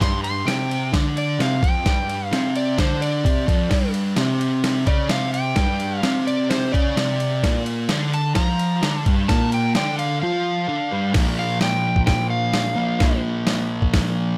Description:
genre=garage rock duo or trio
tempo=129 BPM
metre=4/4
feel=straight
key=unclear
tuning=A4 = 441 Hz
part: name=overdriven slide guitar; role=melody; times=0.0-13.2 s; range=C5 to C6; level=-27 LUFS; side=equal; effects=none
part: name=fuzz guitar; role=riff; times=0.0-14.4 s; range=F2 to F4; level=-24 LUFS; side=equal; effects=distortion
part: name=boom bap sampler-style drum kit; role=drums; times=0.0-14.0 s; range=crash cymbal, hi-hat, kick drum, ride cymbal, snare drum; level=-25 LUFS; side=equal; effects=none
room=light reverb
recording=none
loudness=-21 LUFS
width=mono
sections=0.0-11.1 A section; 11.1-14.4 B section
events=electric slide guitar solo 0.0-11.1; kick and snare drop out 3.2-3.7; break 10.2-11.1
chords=0.0 G5; 7.4 Bb5

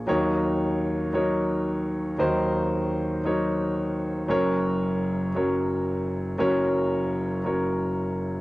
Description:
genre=folk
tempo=57 BPM (dotted quarters)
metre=6/8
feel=straight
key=unclear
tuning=A4 = 440 Hz
part: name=dark grand piano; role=solo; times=0.0-8.4 s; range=Gb1 to Db5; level=-23 LUFS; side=equal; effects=none
room=light reverb, studio reverb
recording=home recording on cassette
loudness=-23 LUFS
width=side -19 dB against mid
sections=0.1-8.4 A section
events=none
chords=0.1 Ebm7; 4.3 Gb

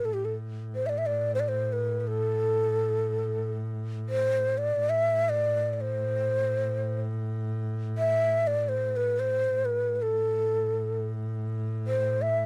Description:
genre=Turkish makam ensemble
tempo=free time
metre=none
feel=none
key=A makam huseyni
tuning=A4 = 440 Hz
part: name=breathy mellow ney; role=melody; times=0.0-12.5 s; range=G4 to E5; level=-28 LUFS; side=equal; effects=none
part: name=clear double bass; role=drone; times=0.0-12.5 s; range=A2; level=-34 LUFS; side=equal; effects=none
room=light reverb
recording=dry, close 1970s-style studio recording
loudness=-28 LUFS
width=mono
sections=0.0-12.5 A section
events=none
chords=none

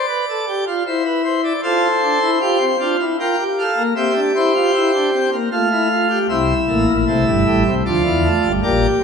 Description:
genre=classical, baroque-style 4-part fugue for pipe organ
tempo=77 BPM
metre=3/4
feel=straight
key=F major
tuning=A4 = 440 Hz
part: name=pipe organ, plenum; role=solo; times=0.0-9.0 s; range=G1 to G5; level=-15 LUFS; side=equal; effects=none
room=wet scoring stage reverb, RT60 1.5 s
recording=minimal, uncompressed stereo recording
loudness=-15 LUFS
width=side -6 dB against mid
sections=0.0-6.3 A section; 6.3-9.0 B section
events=none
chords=0.0 G7; 0.9 C/E; 1.6 F; 3.2 Gm7/F; 4.0 C7; 5.5 F/A; 6.3 Am; 7.9 Dm

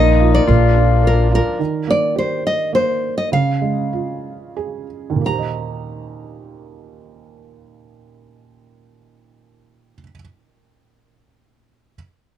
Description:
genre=acoustic folk-pop ballad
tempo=86-108 BPM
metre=3/4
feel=straight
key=Eb major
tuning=A4 = 439 Hz
part: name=nylon-string guitar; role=melody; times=0.0-10.1 s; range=Bb4 to Bb5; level=-19 LUFS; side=left 1 dB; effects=none
part: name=pedal steel guitar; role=second line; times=0.0-1.3 s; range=Eb4 to F4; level=-19 LUFS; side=left 12 dB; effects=none
part: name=felt-muted upright piano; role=accompaniment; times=0.0-12.0 s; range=Eb2 to Eb5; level=-22 LUFS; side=right 7 dB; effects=none
part: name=hand-pumped harmonium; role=sustained chords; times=0.0-1.6 s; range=F3 to Eb4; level=-27 LUFS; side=right 2 dB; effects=none
part: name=upright bass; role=bass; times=0.0-1.4 s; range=Bb1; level=-14 LUFS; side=equal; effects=none
room=studio ambience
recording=dry, close 1970s-style studio recording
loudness=-15 LUFS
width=side -11 dB against mid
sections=0.0-1.6 A section; 1.6-5.2 B section; 5.2-9.4 C section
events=slowing down 1.6-5.2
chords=0.5 Bb; 1.6 Eb; 3.3 Db; 5.2 Eb6

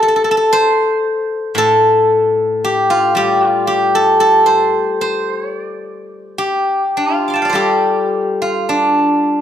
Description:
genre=chinese traditional, Chinese solo plucked strings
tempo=50-57 BPM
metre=2/4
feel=rubato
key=unclear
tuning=A4 = 439 Hz
part: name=steel-string zither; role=solo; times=0.0-9.4 s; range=A2 to D6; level=-12 LUFS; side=equal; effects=none
room=light reverb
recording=none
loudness=-12 LUFS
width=side -9 dB against mid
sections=0.0-7.5 A section; 7.5-9.4 B section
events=none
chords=none

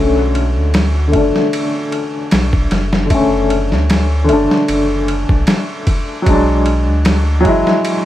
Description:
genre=trip hop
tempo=76 BPM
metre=4/4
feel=swing 54% on 16ths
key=B dorian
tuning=A4 = 439 Hz
part: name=bright upright piano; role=accompaniment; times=0.0-8.1 s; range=D3 to E4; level=-15 LUFS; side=left 1 dB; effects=tremolo, low-pass filter, tape echo
part: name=warm sub bass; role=bass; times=0.0-7.6 s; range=F#1 to D2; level=-16 LUFS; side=equal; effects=tube saturation
part: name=dusty soul sampler-style drum kit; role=drums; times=0.3-8.0 s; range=kick drum, ride cymbal, snare drum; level=-17 LUFS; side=equal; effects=overdrive
room=little or no reverb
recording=vinyl crackle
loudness=-12 LUFS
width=side -13 dB against mid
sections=0.0-8.1 A section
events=filter sweep on upright piano 0.0-8.1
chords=0.0 Bm7; 6.3 E7

